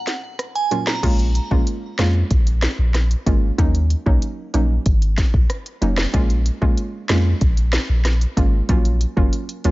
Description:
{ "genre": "dancehall", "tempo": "94 BPM", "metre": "4/4", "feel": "straight", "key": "Bb minor", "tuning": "A4 = 440 Hz", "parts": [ { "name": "glassy synth bell", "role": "melody", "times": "0.0-1.0 s", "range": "Gb5 to Bb5", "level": "-25 LUFS", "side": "right 5 dB", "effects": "chorus, phaser, digital delay" }, { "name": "afro-pop drum kit", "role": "drums", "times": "0.1-9.7 s", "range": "crash cymbal, hi-hat, kick drum, rim click, snare drum", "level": "-20 LUFS", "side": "equal", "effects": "none" }, { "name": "hollow square pluck", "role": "accompaniment", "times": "0.7-9.7 s", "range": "Bb2 to F4", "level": "-24 LUFS", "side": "right 2 dB", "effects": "chorus" }, { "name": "punchy sub bass", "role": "bass", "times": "1.0-9.7 s", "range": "F1 to F2", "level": "-18 LUFS", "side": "equal", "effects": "none" } ], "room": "little or no reverb", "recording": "nothing above 7.5 kHz", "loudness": "-16 LUFS", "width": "side -19 dB against mid", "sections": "0.0-1.0 A section; 1.0-9.7 B section", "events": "break 0.0-1.0", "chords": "0.0 Gbmaj7; 1.0 Bbm7; 3.6 Ebm7; 6.1 Bbm7; 8.7 Gbmaj7" }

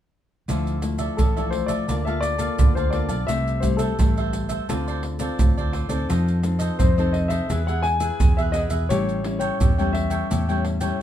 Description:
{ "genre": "samba and choro", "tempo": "86 BPM", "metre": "4/4", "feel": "straight", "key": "D minor", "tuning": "A4 = 440 Hz", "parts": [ { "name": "cavaquinho", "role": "accompaniment", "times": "0.5-11.0 s", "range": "E4 to A5", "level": "-31 LUFS", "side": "right 3 dB", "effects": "none" }, { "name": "nylon-string guitar", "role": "accompaniment", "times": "0.5-11.0 s", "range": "G2 to A4", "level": "-28 LUFS", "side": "left 3 dB", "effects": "none" }, { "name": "vintage muted fingered electric bass", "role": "bass", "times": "0.5-10.9 s", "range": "A1 to F2", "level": "-25 LUFS", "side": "equal", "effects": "none" }, { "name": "maracas, surdo and pandeiro", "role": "percussion", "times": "0.5-11.0 s", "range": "none", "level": "-23 LUFS", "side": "right 2 dB", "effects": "none" }, { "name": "warm grand piano", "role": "melody", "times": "1.2-11.0 s", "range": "A4 to G#5", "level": "-27 LUFS", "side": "left 4 dB", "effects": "none" } ], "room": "moderate studio reverb, RT60 0.9 s", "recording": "minimal, uncompressed stereo recording", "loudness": "-20 LUFS", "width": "side -11 dB against mid", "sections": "0.5-11.0 A section", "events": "none", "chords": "0.5 Dmadd9; 1.9 Bbmaj7/D; 3.3 C6; 4.7 Dm7; 6.1 F7; 7.5 E; 8.9 A7" }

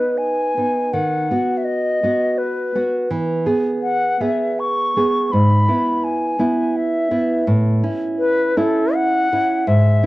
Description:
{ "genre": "romantic duo for flute and classical guitar", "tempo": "83 BPM", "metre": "3/4", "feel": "rubato", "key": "unclear", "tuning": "A4 = 439 Hz", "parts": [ { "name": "mellow silver concert flute", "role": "melody", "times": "0.0-10.1 s", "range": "A4 to C#6", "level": "-20 LUFS", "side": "left 2 dB", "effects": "cassette tape" }, { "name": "nylon-string guitar", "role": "accompaniment", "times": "0.0-10.1 s", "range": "G#2 to G#4", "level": "-18 LUFS", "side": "right 1 dB", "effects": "cassette tape" } ], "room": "wet small room reverb, RT60 0.5 s", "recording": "home recording on cassette", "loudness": "-16 LUFS", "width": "side -18 dB against mid", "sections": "0.0-10.1 A section", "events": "none", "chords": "0.0 B; 0.9 B/D#; 3.1 E; 5.3 E/G#; 7.5 A" }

